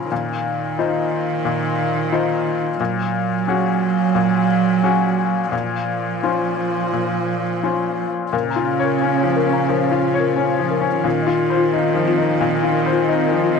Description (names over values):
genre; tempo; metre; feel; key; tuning
neoclassical piano and strings; 88 BPM; 4/4; rubato; Bb minor; A4 = 440 Hz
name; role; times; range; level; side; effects
warm cello; second line; 0.0-13.6 s; Db3 to Gb3; -21 LUFS; right 10 dB; none
bright upright piano; accompaniment; 0.0-13.6 s; F2 to Db5; -20 LUFS; left 7 dB; none
ethereal airy pad; sustained chords; 9.2-13.6 s; C4 to F5; -28 LUFS; right 3 dB; ensemble chorus, built-in reverb
folk marimba with soft mallets; arpeggios; 8.3-13.5 s; F4 to Bb5; -23 LUFS; left 7 dB; slapback echo
room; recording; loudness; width
moderate plate reverb, RT60 3.0 s; 1960s-style stereo with parts hard left and right; -17 LUFS; side -5 dB against mid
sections
0.0-8.3 A section; 8.3-13.6 B section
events
none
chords
0.1 F7sus4/Bb; 2.8 Ab7sus4/Bb; 5.5 Dbmaj7/Bb; 8.3 Bbm; 11.0 F7sus4/Bb